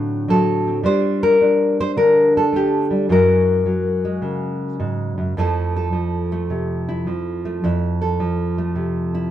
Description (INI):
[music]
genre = solo jazz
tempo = 106 BPM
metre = 4/4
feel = swing 67% on 8ths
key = F major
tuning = A4 = 440 Hz
[part]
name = nylon-string guitar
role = solo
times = 0.0-9.3 s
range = F2 to C5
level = -17 LUFS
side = equal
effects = none
[sound]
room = moderate studio reverb, RT60 0.8 s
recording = none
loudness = -17 LUFS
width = side -11 dB against mid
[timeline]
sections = 0.0-9.3 A section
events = none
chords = 0.0 D7b9; 0.8 Gm9; 3.1 Gb9; 5.4 Fmaj7